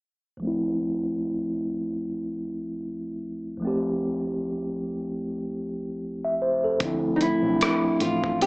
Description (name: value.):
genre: lo-fi hip hop.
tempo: 75 BPM.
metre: 4/4.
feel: swing 55% on 16ths.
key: D minor.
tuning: A4 = 440 Hz.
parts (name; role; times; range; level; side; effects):
mellow tine electric piano; accompaniment; 0.4-8.5 s; D2 to E5; -26 LUFS; equal; medium stereo tremolo, cassette tape, low-pass filter.
vintage muted fingered electric bass; bass; 6.8-8.5 s; A1 to D2; -34 LUFS; equal; none.
dusty soul sampler-style drum kit; drums; 6.8-8.5 s; hi-hat, kick drum, rim click; -28 LUFS; equal; vintage 12-bit sampler grit.
nylon-string guitar; melody; 7.2-8.5 s; Eb4 to G4; -24 LUFS; equal; low-pass filter.
room: moderate plate reverb, RT60 3.7 s.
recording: cassette tape, small speaker sound.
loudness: -24 LUFS.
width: side -29 dB against mid.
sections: 0.4-6.8 A section; 6.8-8.5 B section.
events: filter sweep on tine electric piano 0.4-6.8.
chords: 0.4 Dm9.